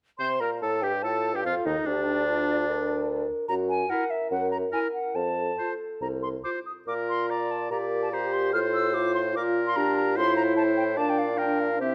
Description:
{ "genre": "quick classical-period movement for wind quintet", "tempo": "145 BPM", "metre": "4/4", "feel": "rubato", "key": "unclear", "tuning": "A4 = 440 Hz", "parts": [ { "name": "mellow concert flute", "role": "melody", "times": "0.2-11.9 s", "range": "D5 to F6", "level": "-32 LUFS", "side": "equal", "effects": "none" }, { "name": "clear oboe", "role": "second line", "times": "0.2-11.9 s", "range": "D4 to D5", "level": "-33 LUFS", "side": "equal", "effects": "none" }, { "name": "clear clarinet", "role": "accompaniment", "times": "0.2-11.9 s", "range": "C4 to C5", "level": "-34 LUFS", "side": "equal", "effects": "none" }, { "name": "mellow bassoon", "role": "bass", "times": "0.2-11.9 s", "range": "C2 to C3", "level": "-32 LUFS", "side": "equal", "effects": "none" }, { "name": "mellow French horn", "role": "accompaniment", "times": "1.0-11.9 s", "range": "D4 to Bb4", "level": "-33 LUFS", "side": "equal", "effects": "none" } ], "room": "moderate recital hall reverb, RT60 1.7 s", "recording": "close, detailed microphones", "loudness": "-27 LUFS", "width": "mono", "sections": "0.2-11.9 A section", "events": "none", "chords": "0.2 Gmadd9; 1.0 F7; 1.9 Bb/D; 3.5 Gb7; 5.2 F; 6.9 Bb; 7.7 C5/Bb; 8.5 F/A; 9.4 Bb; 10.2 F/A; 11.0 Bb6" }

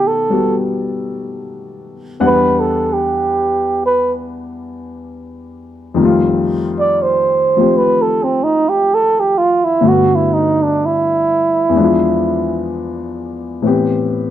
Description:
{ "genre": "jazz", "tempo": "63 BPM", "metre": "4/4", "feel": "swing 66% on 8ths", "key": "unclear", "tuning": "A4 = 442 Hz", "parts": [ { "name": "breathy flugelhorn", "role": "melody", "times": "0.0-12.7 s", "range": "C4 to D5", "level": "-14 LUFS", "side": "right 3 dB", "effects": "none" }, { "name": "warm baby grand piano", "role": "accompaniment", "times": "0.0-14.3 s", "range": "E2 to F#5", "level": "-17 LUFS", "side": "left 3 dB", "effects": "none" } ], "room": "moderate large studio reverb, RT60 1.1 s", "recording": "none", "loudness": "-12 LUFS", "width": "side -11 dB against mid", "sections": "0.0-14.3 A section", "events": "flugelhorn solo 0.0-14.3", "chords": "0.0 B7b13; 2.2 Em7; 6.0 F9; 9.8 Gmaj9; 11.7 E7b9; 13.6 Am7" }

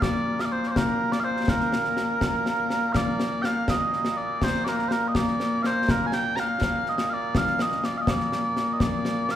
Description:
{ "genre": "scottish traditional, Scottish pipe music", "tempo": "82 BPM (dotted quarters)", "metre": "6/8", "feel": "straight", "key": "Bb major", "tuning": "A4 = 440 Hz", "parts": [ { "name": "mellow small bagpipes", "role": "melody", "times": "0.0-9.4 s", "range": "Bb2 to Bb5", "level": "-24 LUFS", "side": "equal", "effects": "none" }, { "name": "concert snare drum and concert bass drum", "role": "drums", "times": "0.0-9.4 s", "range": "none", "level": "-27 LUFS", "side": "left 1 dB", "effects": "none" } ], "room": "moderate concert hall reverb, RT60 2.3 s", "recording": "recorded in a church or concert hall", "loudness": "-22 LUFS", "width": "side -11 dB against mid", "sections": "0.0-3.0 A section; 3.0-9.4 B section", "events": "none", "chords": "none" }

